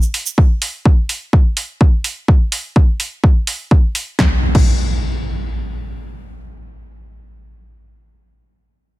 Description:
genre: melodic techno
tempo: 126 BPM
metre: 4/4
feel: straight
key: none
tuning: none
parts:
  - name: punchy analog drum machine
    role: drums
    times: 0.1-4.7 s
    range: crash cymbal, hi-hat, snare drum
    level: -21 LUFS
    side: equal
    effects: overdrive
  - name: electronic kick drum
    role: drums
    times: 0.4-4.7 s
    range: none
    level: -11 LUFS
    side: equal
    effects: overdrive
  - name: impact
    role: sound effects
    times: 4.2-8.2 s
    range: none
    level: -20 LUFS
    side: equal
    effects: none
room: digital ambience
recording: none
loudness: -13 LUFS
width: side -18 dB against mid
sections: 0.0-4.2 A section; 4.2-8.0 B section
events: none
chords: none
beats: | 0.38 0.85 1.33 1.81 | 2.28 2.76 3.23 3.71 | 4.19 4.66 5.14 5.62 | 6.09 6.57 7.04 7.52

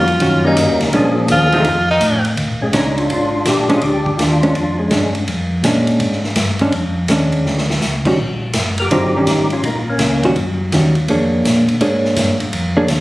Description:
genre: soul jazz organ trio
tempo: 165 BPM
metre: 4/4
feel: swing 66% on 8ths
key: unclear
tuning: A4 = 440 Hz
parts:
  - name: clear tenor saxophone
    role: melody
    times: 0.0-2.2 s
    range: Eb4 to F4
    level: -15 LUFS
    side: equal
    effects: none
  - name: percussive tonewheel organ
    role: melody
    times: 0.0-5.1, 8.8-10.3 s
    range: F3 to Bb4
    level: -18 LUFS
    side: left 1 dB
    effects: slow rotary speaker, chorus vibrato
  - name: hollow-body jazz guitar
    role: accompaniment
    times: 0.0-12.9 s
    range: D3 to C#5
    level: -17 LUFS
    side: right 1 dB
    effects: none
  - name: mellow tonewheel organ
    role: bass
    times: 0.0-13.0 s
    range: F#1 to Bb2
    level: -19 LUFS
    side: equal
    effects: slow rotary speaker
  - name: vintage drum kit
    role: drums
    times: 0.1-13.0 s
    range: crash cymbal, hi-hat, kick drum, ride cymbal, snare drum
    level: -22 LUFS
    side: equal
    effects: none
room: light reverb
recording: recorded on a phone in the room, studio reverb, compression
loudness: -13 LUFS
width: side -18 dB against mid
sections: 0.0-2.4 A section; 2.4-13.0 B section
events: tenor saxophone solo 0.0-2.4; drum fill 7.5-7.8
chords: 0.0 Eb7#9; 0.9 Bb7#9; 1.6 F7; 2.4 Bb7#9; 8.2 Eb7#9; 11.1 Bb7#9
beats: 0.20 0.56 | 0.93 1.29 1.65 2.01 | 2.37 2.74 3.10 3.46 | 3.83 4.19 4.55 4.91 | 5.28 5.64 6.00 6.36 | 6.73 7.09 7.45 7.82 | 8.18 8.54 8.90 9.27 | 9.63 9.99 10.36 10.72 | 11.08 11.44 11.81 12.17 | 12.53 12.89

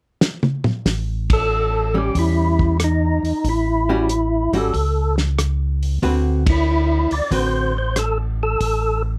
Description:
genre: soul jazz organ trio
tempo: 93 BPM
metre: 4/4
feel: swing 68% on 8ths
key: A mixolydian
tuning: A4 = 440 Hz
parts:
  - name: warm soul drum kit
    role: drums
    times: 0.2-8.8 s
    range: hi-hat, kick drum, ride cymbal, rim click, snare drum, toms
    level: -24 LUFS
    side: equal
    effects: none
  - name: mellow tonewheel organ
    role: bass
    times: 0.9-9.2 s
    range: G#1 to E2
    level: -23 LUFS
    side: equal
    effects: overdrive, chorus vibrato, slow rotary speaker
  - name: percussive tonewheel organ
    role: melody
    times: 1.3-9.0 s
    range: D#4 to D5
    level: -23 LUFS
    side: equal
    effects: slow rotary speaker, overdrive, chorus vibrato
  - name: archtop guitar, miked and amplified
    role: accompaniment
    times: 1.9-7.7 s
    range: D3 to B4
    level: -24 LUFS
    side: equal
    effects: none
room: light reverb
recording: none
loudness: -19 LUFS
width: mono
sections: 0.9-9.2 A section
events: drum fill 0.2-0.9; band accent 1.2-1.5, 6.3-6.7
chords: 0.0 N.C.; 0.9 A; 6.0 D13; 8.6 N.C.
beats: 0.21 | 0.86 1.51 2.15 2.80 | 3.44 4.09 4.74 5.38 | 6.03 6.67 7.32 7.97 | 8.61

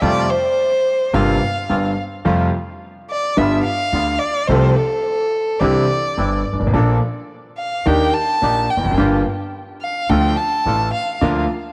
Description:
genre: tango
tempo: 107 BPM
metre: 4/4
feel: rubato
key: F major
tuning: A4 = 440 Hz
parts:
  - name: warm violin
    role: second line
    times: 0.0-11.2 s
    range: A4 to A5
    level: -22 LUFS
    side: equal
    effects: cassette tape, tape echo
  - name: clear concert grand piano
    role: accompaniment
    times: 0.0-11.5 s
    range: G1 to A4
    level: -22 LUFS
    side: equal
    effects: cassette tape
  - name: bandoneon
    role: stabs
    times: 0.0-11.5 s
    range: G3 to Bb4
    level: -30 LUFS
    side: equal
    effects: cassette tape
  - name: upright bass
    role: bass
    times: 0.0-11.5 s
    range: E1 to F2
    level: -24 LUFS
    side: equal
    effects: transformer saturation
room: light reverb, studio reverb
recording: home recording on cassette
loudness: -18 LUFS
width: mono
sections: 0.0-11.7 A section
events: violin solo 0.0-11.7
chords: 0.0 Fadd9; 1.1 C7sus4/G; 2.3 Fadd9; 3.4 G7; 4.5 F/C; 5.6 Cadd9; 6.7 Bbmaj7; 7.9 Ebmaj7; 9.0 Gm7; 10.1 Dm; 11.2 Bb/D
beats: | 0.02 0.58 1.14 1.70 | 2.25 2.81 3.37 3.93 | 4.49 5.05 5.62 6.18 | 6.74 7.30 7.87 8.43 | 8.98 9.54 10.10 10.66 | 11.21

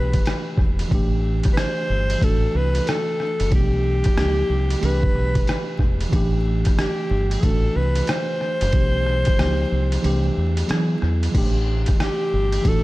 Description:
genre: hip hop, jazz-hop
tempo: 92 BPM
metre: 4/4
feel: swing 64% on 16ths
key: A dorian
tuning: A4 = 442 Hz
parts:
  - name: breathy alto saxophone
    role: melody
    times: 0.0-12.8 s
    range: G4 to C5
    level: -25 LUFS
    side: equal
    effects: tape echo
  - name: mellow tine electric piano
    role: accompaniment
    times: 0.0-12.8 s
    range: E3 to G#4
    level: -26 LUFS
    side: right 1 dB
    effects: medium stereo tremolo
  - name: deep dub fingered electric bass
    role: bass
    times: 0.0-12.8 s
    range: E1 to E3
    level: -21 LUFS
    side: equal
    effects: none
  - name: trip hop sampler-style drum kit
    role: drums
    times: 0.1-12.8 s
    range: crash cymbal, hi-hat, kick drum, ride cymbal, rim click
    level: -23 LUFS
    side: equal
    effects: overdrive
room: little or no reverb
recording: dark, warm production, vinyl crackle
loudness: -18 LUFS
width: side -19 dB against mid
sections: 0.0-11.3 A section; 11.3-12.8 A section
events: kick muted 10.0-11.3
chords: 0.0 Cmaj9 (rootless); 0.9 Am7; 2.2 D9/A; 3.5 G69/B; 4.2 C#maj9; 4.8 Cmaj9; 6.1 A5; 7.4 D9/A; 8.7 G69/B; 9.4 C#maj9; 10.0 Cadd9; 10.7 Eadd9; 11.3 A5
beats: 0.26 | 0.91 1.56 2.22 2.87 | 3.52 4.17 4.83 5.48 | 6.13 6.78 7.43 8.09 | 8.74 9.39 10.04 10.70 | 11.35 12.00 12.65

